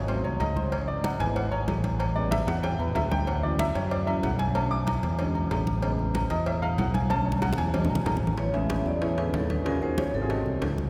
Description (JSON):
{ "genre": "Afro-Cuban jazz", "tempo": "188 BPM", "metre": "4/4", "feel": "straight", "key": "A major", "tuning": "A4 = 444 Hz", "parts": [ { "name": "warm baby grand piano", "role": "accompaniment", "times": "0.0-10.8 s", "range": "C#3 to D6", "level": "-33 LUFS", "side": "equal", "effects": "none" }, { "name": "fingered electric bass", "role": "bass", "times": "0.0-10.9 s", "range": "G#1 to F#2", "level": "-31 LUFS", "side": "equal", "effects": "none" }, { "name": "agogo bells and timbales", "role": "percussion", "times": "0.1-10.8 s", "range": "none", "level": "-37 LUFS", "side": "equal", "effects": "none" }, { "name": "congas", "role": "percussion", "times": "0.1-10.9 s", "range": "none", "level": "-37 LUFS", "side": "equal", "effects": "none" }, { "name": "cowbell and bongos", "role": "percussion", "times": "0.1-10.9 s", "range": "none", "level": "-38 LUFS", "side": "equal", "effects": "none" }, { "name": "vibraphone with medium mallets", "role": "melody", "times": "8.4-10.7 s", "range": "A4 to E5", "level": "-37 LUFS", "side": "equal", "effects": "none" }, { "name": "breathy trombone", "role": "second line", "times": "8.4-10.7 s", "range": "C3 to G#3", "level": "-36 LUFS", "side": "equal", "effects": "none" } ], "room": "wet cathedral reverb, RT60 6.5 s", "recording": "recorded in a church or concert hall", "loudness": "-27 LUFS", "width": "mono", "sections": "0.0-8.4 A section; 8.4-10.9 B section", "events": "grand piano solo 0.0-8.4; drum fill 2.3-3.3, 7.1-8.4", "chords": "0.1 G#7b9; 0.7 C#m7; 2.0 A7; 3.3 Dmaj7; 4.6 Bm7; 5.2 E13; 5.8 Amaj9; 7.1 Bm7; 7.7 E9; 8.4 Amaj9; 9.7 D#m11; 10.3 G#7b9" }